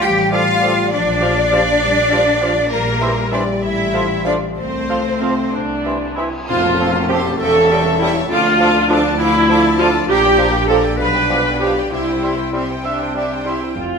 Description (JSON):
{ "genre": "cinematic, playful, whimsical film cue", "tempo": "66 BPM (dotted quarters)", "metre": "6/8", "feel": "straight", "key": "F major", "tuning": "A4 = 441 Hz", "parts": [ { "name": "rich symphonic violin section", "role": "melody", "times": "0.0-13.8 s", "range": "Bb4 to D6", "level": "-26 LUFS", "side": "left 4 dB", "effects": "none" }, { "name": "mellow hollow silver concert flute", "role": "second line", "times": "0.0-13.5 s", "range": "Bb4 to G5", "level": "-23 LUFS", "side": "left 1 dB", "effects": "none" }, { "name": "rich chamber violin section", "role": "second line", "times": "0.0-13.8 s", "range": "G4 to G5", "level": "-24 LUFS", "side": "left 3 dB", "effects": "none" }, { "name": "dark French horn section", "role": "sustained chords", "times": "0.0-14.0 s", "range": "F3 to D4", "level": "-24 LUFS", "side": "left 4 dB", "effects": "none" }, { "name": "clear chamber cello section", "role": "bass", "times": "0.0-14.0 s", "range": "D2 to G4", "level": "-22 LUFS", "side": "right 2 dB", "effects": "none" }, { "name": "rich chamber double bass section", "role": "bass", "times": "0.0-14.0 s", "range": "E1 to D2", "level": "-24 LUFS", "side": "right 2 dB", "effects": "none" }, { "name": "clear clarinet", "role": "second line", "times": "0.3-14.0 s", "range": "C4 to B4", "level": "-24 LUFS", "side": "left 2 dB", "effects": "none" }, { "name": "dark cor anglais", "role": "second line", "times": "0.3-13.6 s", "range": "A4 to E5", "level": "-27 LUFS", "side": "right 1 dB", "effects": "none" }, { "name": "clear bassoon", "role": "accompaniment", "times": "0.3-13.6 s", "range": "E3 to G3", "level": "-26 LUFS", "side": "right 2 dB", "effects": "none" }, { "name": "rich chamber viola section", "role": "accompaniment", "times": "0.3-14.0 s", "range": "C4 to F5", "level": "-18 LUFS", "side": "right 2 dB", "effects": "none" }, { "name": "cymbal swell and tam-tam", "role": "percussion", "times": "2.7-8.9 s", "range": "none", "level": "-29 LUFS", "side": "left 3 dB", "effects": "none" } ], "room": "wet scoring stage reverb, RT60 1.6 s", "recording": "minimal, uncompressed stereo recording", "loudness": "-14 LUFS", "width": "side -5 dB against mid", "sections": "0.0-6.5 A section; 6.5-14.0 B section", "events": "band accent 6.5-7.1", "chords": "0.0 Dm; 0.9 Gm7/Bb; 2.7 C7/Bb; 3.6 F/A; 4.6 F/C; 5.5 C; 6.5 F; 7.4 A7/E; 8.3 Dm; 10.1 Gm7/Bb; 11.0 G7/B; 11.9 C" }